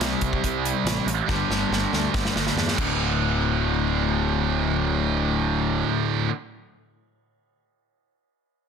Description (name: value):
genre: hard rock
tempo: 140 BPM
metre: 4/4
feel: straight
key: unclear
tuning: A4 = 440 Hz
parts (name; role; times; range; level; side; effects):
- high-gain distorted guitar; riff; 0.0-6.3 s; D2 to C4; -25 LUFS; right 12 dB; distortion
- overdriven semi-hollow guitar; riff; 0.0-6.3 s; D2 to C4; -27 LUFS; left 10 dB; harmonic tremolo
- fuzz picked electric bass; bass; 0.0-5.8 s; D1 to E2; -27 LUFS; equal; overdrive
- big rock drum kit; drums; 0.0-2.9 s; crash cymbal, hi-hat, kick drum, snare drum; -28 LUFS; equal; none
room: small room ambience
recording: dense, heavily limited modern master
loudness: -21 LUFS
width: side -6 dB against mid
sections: 0.0-3.0 A section; 3.0-6.4 B section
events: drum fill 1.3-3.0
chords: 0.0 C5; 1.3 G5; 2.8 D5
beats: 0.42 0.85 | 1.28 1.71 2.13 2.56 | 2.99 3.42 3.85 4.28 | 4.71 5.13 5.56 5.99